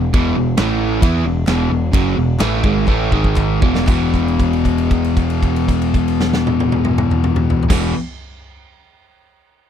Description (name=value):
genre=classic rock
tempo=116-136 BPM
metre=4/4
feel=straight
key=E major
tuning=A4 = 440 Hz
part: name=crunchy overdriven guitar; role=riff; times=0.0-7.9 s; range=E2 to E4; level=-22 LUFS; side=right 10 dB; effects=none
part: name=distorted electric guitar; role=riff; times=0.0-7.9 s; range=E2 to E4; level=-20 LUFS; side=left 12 dB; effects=distortion
part: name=fuzz guitar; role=riff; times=0.0-7.9 s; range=E2 to E4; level=-23 LUFS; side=right 1 dB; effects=distortion
part: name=growling picked electric bass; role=bass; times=0.0-7.9 s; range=E1 to E2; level=-20 LUFS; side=equal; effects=overdrive
part: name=big rock drum kit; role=drums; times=0.1-7.8 s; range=crash cymbal, kick drum, ride cymbal, snare drum, toms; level=-19 LUFS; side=equal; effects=none
part: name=group handclap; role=percussion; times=0.6-4.1 s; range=none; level=-35 LUFS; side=left 3 dB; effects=none
room=little or no reverb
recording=dry, close 1970s-style studio recording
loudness=-14 LUFS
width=side -9 dB against mid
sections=0.0-3.9 A section; 3.9-8.0 B section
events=slowing down 0.1-3.9; drum fill 2.9-3.9; held note 3.9-7.7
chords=0.0 E5; 0.6 A5; 1.0 E; 3.1 G#5; 3.6 E5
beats=| 0.13 0.57 1.02 1.47 | 1.93 2.40 2.88 3.37 | 3.88 4.39 4.91 5.42 | 5.94 6.46 6.97 7.49